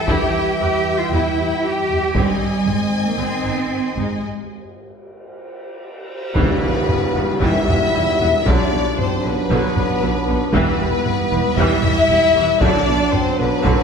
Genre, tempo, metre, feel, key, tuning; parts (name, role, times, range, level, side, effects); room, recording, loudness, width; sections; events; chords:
cinematic, epic orchestral film score; 115 BPM; 4/4; straight; E minor from 6.4 s; A4 = 435 Hz
warm symphonic violin section; melody; 0.0-13.8 s; B4 to Ab5; -25 LUFS; left 4 dB
warm symphonic violin section; second line; 0.0-13.8 s; B4 to E5; -26 LUFS; left 1 dB
clear trombone section; sustained chords; 0.0-13.8 s; Eb3 to E4; -26 LUFS; right 4 dB
warm French horn section; sustained chords; 0.0-13.8 s; B3 to E5; -22 LUFS; left 3 dB
warm studio cello section; bass; 0.0-13.7 s; E2 to G4; -24 LUFS; right 2 dB
clear symphonic viola section; accompaniment; 0.1-13.8 s; D3 to B4; -25 LUFS; right 1 dB
rich symphonic double bass section; bass; 0.1-13.7 s; E1 to E2; -25 LUFS; right 2 dB
taiko ensemble; drums; 0.1-13.8 s; -23 LUFS; equal
cymbal swell and tam-tam; percussion; 2.2-8.4 s; -28 LUFS; equal
wet scoring stage reverb, RT60 1.6 s; heard from further back in the room; -15 LUFS; side -6 dB against mid
0.0-6.4 A section; 6.4-13.8 B section
break 4.2-6.4; band accent 6.4-6.9
0.0 Em; 2.1 Ab; 4.2 N.C.; 6.4 Em; 8.5 Bm; 10.5 Em; 12.6 Bm